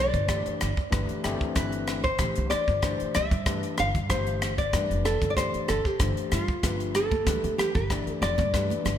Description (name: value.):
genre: electric jazz fusion.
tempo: 95 BPM.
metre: 4/4.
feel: straight.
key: G mixolydian.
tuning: A4 = 440 Hz.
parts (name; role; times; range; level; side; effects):
nylon-string guitar; melody; 0.0-9.0 s; F4 to F5; -28 LUFS; equal; ping-pong delay.
overdriven tine electric piano; accompaniment; 0.0-9.0 s; E3 to D5; -33 LUFS; left 4 dB; analog chorus.
upright bass; bass; 0.0-9.0 s; F1 to G2; -30 LUFS; right 1 dB; none.
crisp fusion drum kit; drums; 0.1-9.0 s; hi-hat, kick drum, rim click; -29 LUFS; equal; gated reverb.
congas; percussion; 7.1-9.0 s; none; -36 LUFS; right 10 dB; none.
room: light reverb, small room ambience.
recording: bright 1980s-style digital production.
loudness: -24 LUFS.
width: side -10 dB against mid.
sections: 0.0-9.0 A section.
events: none.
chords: 0.0 G69; 1.2 D7sus2/G; 6.6 G13.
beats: 0.29 0.93 | 1.56 2.20 2.83 3.47 | 4.10 4.74 5.37 6.00 | 6.64 7.27 7.91 8.54.